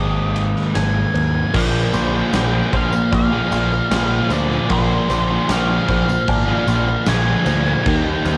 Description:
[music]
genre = rock, shoegaze and dream pop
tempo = 76 BPM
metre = 4/4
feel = straight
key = Bb mixolydian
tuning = A4 = 439 Hz
[part]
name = octave-fuzz lead guitar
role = melody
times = 0.0-8.4 s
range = C5 to Ab5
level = -26 LUFS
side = equal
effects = distortion, cassette tape, tape echo
[part]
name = direct-recorded clean electric guitar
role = arpeggios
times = 0.0-8.4 s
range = Bb4 to D6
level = -33 LUFS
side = equal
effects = lush chorus, cassette tape, tape echo
[part]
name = overdriven electric guitar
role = riff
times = 0.0-8.4 s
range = Bb2 to Ab4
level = -25 LUFS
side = equal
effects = reverse reverb, cassette tape
[part]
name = thick fuzz guitar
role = riff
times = 0.0-8.4 s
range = Ab2 to Eb4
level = -24 LUFS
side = equal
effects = distortion, analog chorus, cassette tape
[part]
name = growling picked electric bass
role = bass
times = 0.0-8.4 s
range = Ab1 to Eb2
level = -23 LUFS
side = equal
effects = overdrive
[part]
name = huge arena drum kit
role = drums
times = 0.4-8.4 s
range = crash cymbal, kick drum, ride cymbal, snare drum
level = -26 LUFS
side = equal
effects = cassette tape
[part]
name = tambourine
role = percussion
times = 1.9-8.4 s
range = none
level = -41 LUFS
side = equal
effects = none
[sound]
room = moderate booth ambience, RT60 0.2 s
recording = home recording on cassette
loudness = -18 LUFS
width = mono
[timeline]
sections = 0.0-1.5 A section; 1.5-8.4 B section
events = none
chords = 0.0 Absus2; 1.5 Bb9; 7.9 Eb6

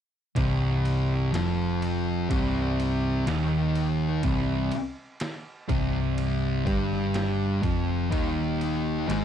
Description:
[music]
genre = stoner and doom metal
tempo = 62 BPM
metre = 4/4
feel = straight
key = C minor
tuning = A4 = 440 Hz
[part]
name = thick fuzz guitar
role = riff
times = 0.4-9.2 s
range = C2 to Ab3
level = -27 LUFS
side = left 5 dB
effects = distortion
[part]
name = thick fuzz guitar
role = riff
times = 0.4-9.2 s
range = C2 to Ab3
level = -29 LUFS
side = right 11 dB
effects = distortion
[part]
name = hollow-body short-scale picked electric bass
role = bass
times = 0.4-9.2 s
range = C1 to Ab1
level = -31 LUFS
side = equal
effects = overdrive
[part]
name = trip hop sampler-style drum kit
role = drums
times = 0.4-9.2 s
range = kick drum, ride cymbal, snare drum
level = -34 LUFS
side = equal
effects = none
[sound]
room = light reverb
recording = dark, warm production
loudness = -24 LUFS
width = side -9 dB against mid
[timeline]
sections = 0.4-9.2 A section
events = none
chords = 0.4 Cm; 8.1 Eb5

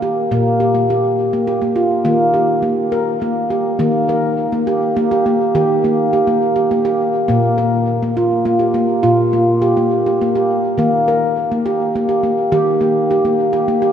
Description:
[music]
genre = world meditative, meditative tuned percussion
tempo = 69 BPM (dotted quarters)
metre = 6/8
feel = straight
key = Eb major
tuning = A4 = 440 Hz
[part]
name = handpan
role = solo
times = 0.0-13.9 s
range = Bb2 to Bb4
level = -13 LUFS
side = equal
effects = diffuse ambient delay
[sound]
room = wet cathedral reverb, RT60 5.2 s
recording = in a vast, echoing space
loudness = -13 LUFS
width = side -8 dB against mid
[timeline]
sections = 0.0-3.8 A section; 3.8-13.9 B section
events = none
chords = 0.3 Bb5; 2.1 Eb; 7.3 Bb5; 10.8 Eb

